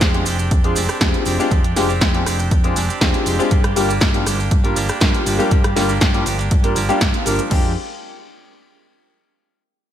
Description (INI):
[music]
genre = filtered disco house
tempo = 120 BPM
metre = 4/4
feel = straight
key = F dorian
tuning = A4 = 437 Hz
[part]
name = direct-recorded clean electric guitar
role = riff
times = 0.0-7.7 s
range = F3 to G4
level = -26 LUFS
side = right 5 dB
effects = sidechain pumping
[part]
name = hollow-body short-scale fingered electric bass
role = bass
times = 0.0-7.7 s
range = F1 to G2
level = -22 LUFS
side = equal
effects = sidechain pumping
[part]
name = electronic kick drum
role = drums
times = 0.0-7.6 s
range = none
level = -18 LUFS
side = equal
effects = none
[part]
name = punchy analog drum machine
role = drums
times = 0.0-7.6 s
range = crash cymbal, hi-hat, rim click, snare drum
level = -22 LUFS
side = equal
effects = sidechain pumping on hats, sidechain pumping on cymbals, gated reverb
[part]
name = maracas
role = percussion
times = 0.0-7.5 s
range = none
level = -31 LUFS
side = right 4 dB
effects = sidechain pumping on perc
[part]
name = warm concert grand piano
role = accompaniment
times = 0.1-7.7 s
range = G3 to Bb4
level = -21 LUFS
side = left 2 dB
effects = phaser, sidechain pumping
[sound]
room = light reverb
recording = bright 1980s-style digital production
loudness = -15 LUFS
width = side -10 dB against mid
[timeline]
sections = 0.0-7.5 A section; 7.5-9.5 B section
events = drop 0.0-7.5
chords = 0.0 Fm69; 3.5 Gm7; 7.5 Fm69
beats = 0.01 0.51 1.01 | 1.51 2.01 2.51 3.01 | 3.51 4.01 4.51 5.01 | 5.51 6.01 6.51 7.01 | 7.51